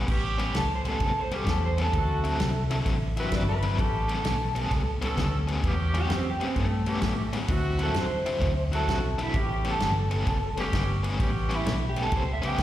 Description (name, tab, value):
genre	electric blues shuffle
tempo	130 BPM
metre	4/4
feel	swing 66% on 8ths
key	A mixolydian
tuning	A4 = 438 Hz
part	biting overdriven guitar	riff	0.0-12.6 s	A2 to E4	-32 LUFS	left 3 dB	tremolo, slapback echo
part	vintage muted fingered electric bass	bass	0.0-12.6 s	F#1 to A2	-28 LUFS	equal	none
part	clear horn section	stabs	0.1-12.6 s	B3 to A4	-34 LUFS	right 1 dB	slapback echo
part	natural country drum kit	drums	0.1-12.6 s	crash cymbal, kick drum, ride cymbal, snare drum	-31 LUFS	equal	none
part	electric guitar through a small old amp	melody	0.6-12.6 s	A3 to G5	-30 LUFS	right 1 dB	wide subtle chorus, slapback echo
room	little or no reverb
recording	live gig heard through the venue's PA, recital hall reverb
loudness	-24 LUFS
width	side -13 dB against mid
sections	0.1-12.6 A section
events	clean electric guitar solo 0.1-12.6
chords	0.1 A9; 1.9 D9; 3.8 A9; 7.5 D9; 9.3 A9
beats	| 0.08 0.55 1.01 1.47 | 1.94 2.40 2.86 3.33 | 3.79 4.25 4.71 5.18 | 5.64 6.10 6.57 7.03 | 7.49 7.96 8.42 8.88 | 9.35 9.81 10.27 10.74 | 11.20 11.66 12.13 12.59